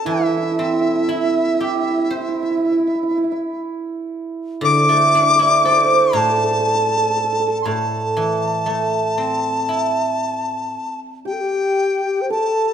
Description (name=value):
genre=chinese traditional, Chinese chamber ensemble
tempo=59 BPM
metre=4/4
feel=straight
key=A yu mode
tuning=A4 = 440 Hz
part: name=bright dizi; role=melody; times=0.0-12.7 s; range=E5 to D6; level=-19 LUFS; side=left 2 dB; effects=none
part: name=hammered dulcimer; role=second line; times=0.0-12.7 s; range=E4 to D5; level=-21 LUFS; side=right 3 dB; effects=none
part: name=guzheng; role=accompaniment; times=0.1-11.8 s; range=A2 to C5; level=-22 LUFS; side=right 2 dB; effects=none
part: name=mellow xiao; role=second line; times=11.3-12.7 s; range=G4 to C5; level=-19 LUFS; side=left 4 dB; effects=none
room=wet recital hall reverb, RT60 1.5 s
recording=minimal, uncompressed stereo recording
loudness=-16 LUFS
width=side -8 dB against mid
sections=0.0-12.3 A section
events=none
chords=none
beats=| 0.07 1.08 2.10 3.11 | 4.12 5.14 6.15 7.16 | 8.17 9.19 10.21 11.26 | 12.30